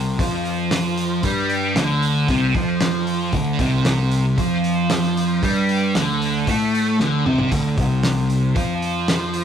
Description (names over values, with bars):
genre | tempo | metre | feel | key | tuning
psychedelic rock | 115 BPM | 4/4 | straight | D minor | A4 = 438 Hz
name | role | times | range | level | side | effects
thick fuzz guitar | riff | 0.0-9.4 s | C3 to A3 | -19 LUFS | equal | distortion, phaser
fuzz picked electric bass | bass | 0.0-9.4 s | C2 to A2 | -25 LUFS | equal | overdrive
cloth-damped thuddy drum kit | drums | 0.2-9.4 s | hi-hat, kick drum, snare drum, splash cymbal, toms | -24 LUFS | equal | none
room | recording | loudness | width
moderate small room reverb, RT60 0.5 s | rough rehearsal-room recording | -17 LUFS | side -8 dB against mid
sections
0.0-9.4 A section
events
drum fill 7.0-7.5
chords
0.0 Dm